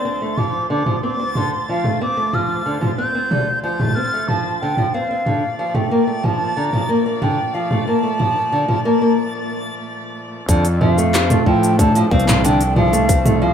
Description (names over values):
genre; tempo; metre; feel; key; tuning
folktronica; 92 BPM; 4/4; straight; F major; A4 = 436 Hz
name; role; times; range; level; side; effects
wooden flute; melody; 0.0-13.5 s; F5 to G6; -22 LUFS; equal; digital delay
nylon-string guitar; arpeggios; 0.0-13.5 s; D3 to C4; -20 LUFS; equal; low-pass filter, digital delay
backwards swelling texture; texture; 0.0-9.2 s; A6; -33 LUFS; left 2 dB; built-in reverb
rich string quartet; sustained chords; 0.1-13.5 s; D2 to D5; -30 LUFS; left 1 dB; none
organic electronic drum kit; drums; 0.4-13.4 s; handclaps, hi-hat, shaker, toms; -21 LUFS; equal; overdrive
fuzz fingered electric bass; bass; 10.5-13.5 s; C2 to A2; -18 LUFS; equal; overdrive
electronic kick drum; drums; 10.5-13.2 s; none; -18 LUFS; equal; overdrive
room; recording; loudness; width
light reverb; rough home demo mix; -15 LUFS; side -8 dB against mid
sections
0.0-10.5 A section; 10.5-13.5 B section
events
filter sweep on nylon-string guitar 0.0-10.5; break 9.2-10.5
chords
0.0 Dm7; 5.3 Bbmaj7; 10.5 F6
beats
| 0.05 0.70 1.35 2.01 | 2.66 3.31 3.96 4.61 | 5.27 5.92 6.57 7.22 | 7.88 8.53 9.18 9.83 | 10.48 11.14 11.79 12.44 | 13.09